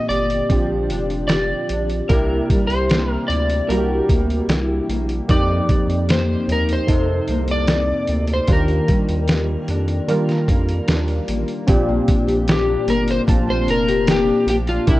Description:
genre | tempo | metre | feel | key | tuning
indie pop, bedroom pop | 75 BPM | 4/4 | straight | Bb major | A4 = 441 Hz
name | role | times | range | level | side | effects
electric slide guitar | melody | 0.0-15.0 s | E4 to D5 | -23 LUFS | left 1 dB | lush chorus
nylon-string guitar | accompaniment | 0.0-15.0 s | F2 to G4 | -23 LUFS | left 2 dB | lush chorus, vibrato effect
warm analog keys | accompaniment | 0.0-15.0 s | D3 to A5 | -25 LUFS | right 2 dB | chorus, cassette tape
round analog bass | bass | 0.1-15.0 s | F1 to Eb3 | -22 LUFS | equal | none
lo-fi sampler-style drum kit | drums | 0.1-15.0 s | hi-hat, kick drum, snare drum | -19 LUFS | equal | vintage 12-bit sampler grit
room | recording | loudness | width
light reverb | worn, warbling old tape, cassette tape, warbly pitch drift | -16 LUFS | side -17 dB against mid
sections
0.0-11.7 A section; 11.7-15.0 B section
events
electric slide guitar solo 11.7-15.0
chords
0.0 Bb6; 2.1 C7; 5.3 F7sus4; 8.5 Ebmaj7; 11.7 Bb6

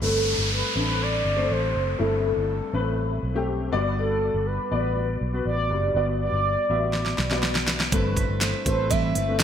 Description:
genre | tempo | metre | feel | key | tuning
piano-driven pop | 121 BPM | 4/4 | straight | unclear | A4 = 443 Hz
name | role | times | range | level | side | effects
mellow horn-like synth lead | melody | 0.0-9.4 s | A4 to E5 | -26 LUFS | right 1 dB | chorus, phaser
dark upright piano | accompaniment | 0.0-9.4 s | G2 to E5 | -28 LUFS | left 4 dB | ensemble chorus
vintage muted fingered electric bass | bass | 0.0-9.4 s | F#1 to B1 | -27 LUFS | equal | none
downlifter | sound effects | 0.0-4.0 s | none | -29 LUFS | equal | none
pop drum kit | drums | 6.9-9.4 s | hi-hat, kick drum, snare drum | -25 LUFS | right 1 dB | gated reverb
picked steel-string acoustic guitar | riff | 7.9-9.4 s | G2 to B4 | -29 LUFS | right 6 dB | lush chorus
room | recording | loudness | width
moderate plate reverb, RT60 1.4 s, digital ambience | bright 1980s-style digital production | -22 LUFS | side -8 dB against mid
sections
0.0-9.4 A section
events
drum fill 6.9-7.9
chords
0.0 Amadd9; 3.7 Bm; 7.9 Amadd9

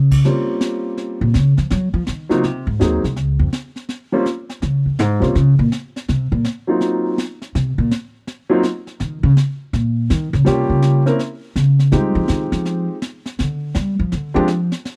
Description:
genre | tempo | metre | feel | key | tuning
jazz piano trio | 164 BPM | 4/4 | swing 65% on 8ths | Eb mixolydian | A4 = 440 Hz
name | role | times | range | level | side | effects
upright bass | bass | 0.0-14.7 s | C2 to G3 | -18 LUFS | equal | none
jazz brush drum kit | drums | 0.1-15.0 s | brushed snare drum, crash cymbal, kick drum, snare drum | -28 LUFS | equal | none
warm concert grand piano | melody | 0.2-14.5 s | Gb3 to Bb4 | -20 LUFS | equal | none
room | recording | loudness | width
small room ambience | dry, close 1970s-style studio recording | -18 LUFS | mono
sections
0.2-15.0 A section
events
upright bass solo 0.2-15.0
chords
0.2 Bbm69; 1.7 Ab9 (rootless); 3.2 Db; 4.6 Bbm7 (rootless); 5.4 Bbm; 6.1 Ebm6/Bb (rootless); 9.0 Eb5; 10.5 Gm7b5; 11.2 N.C.; 11.9 Fm7; 13.4 Dmadd11

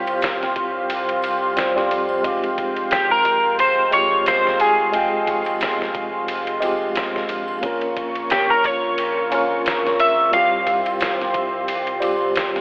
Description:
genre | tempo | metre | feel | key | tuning
trip hop | 89 BPM | 4/4 | swing 56% on 16ths | F minor | A4 = 443 Hz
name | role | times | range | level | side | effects
clean electric guitar | melody | 0.0-12.6 s | G4 to F5 | -19 LUFS | equal | analog chorus, tape echo
tine electric piano | accompaniment | 0.0-12.6 s | C3 to G5 | -24 LUFS | equal | harmonic tremolo, tape echo
dark analog pad | sustained chords | 0.0-12.6 s | Ab3 to Db6 | -24 LUFS | equal | chorus
round analog bass | bass | 0.0-12.6 s | F1 to F2 | -37 LUFS | equal | none
trip hop sampler-style drum kit | drums | 0.1-12.6 s | kick drum, ride cymbal, snare drum | -26 LUFS | equal | none
triangle and egg shaker | percussion | 0.1-12.5 s | none | -50 LUFS | left 1 dB | none
room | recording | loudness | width
light reverb | telephone sound | -17 LUFS | side -26 dB against mid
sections
0.0-12.6 A section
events
none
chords
0.0 Csus4; 2.2 Fmadd9; 7.6 Bbm; 10.3 Csus4

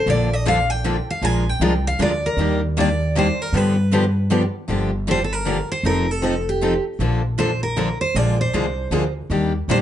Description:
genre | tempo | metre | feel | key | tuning
acoustic string swing (jazz manouche) | 156 BPM | 3/4 | swing 62% on 8ths | G minor from 4.7 s | A4 = 440 Hz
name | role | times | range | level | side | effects
picked steel-string acoustic guitar | melody | 0.0-9.8 s | G4 to Ab5 | -23 LUFS | right 1 dB | none
picked steel-string acoustic guitar | accompaniment | 0.1-9.8 s | D3 to Bb4 | -23 LUFS | left 4 dB | none
picked steel-string acoustic guitar | accompaniment | 0.1-9.8 s | D3 to Bb4 | -27 LUFS | right 5 dB | none
upright bass | bass | 0.1-9.8 s | F1 to G2 | -22 LUFS | equal | none
room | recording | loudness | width
moderate club reverb, RT60 0.8 s | nothing above 10.5 kHz | -18 LUFS | side -11 dB against mid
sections
0.0-4.7 A section; 4.7-9.8 B section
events
none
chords
0.1 Bbmaj7; 1.2 Bb7; 2.4 Ebmaj7; 3.5 G7; 4.7 Gm7; 5.8 F9; 7.0 Bbmaj7; 8.1 Bb9; 9.3 Ebmaj7

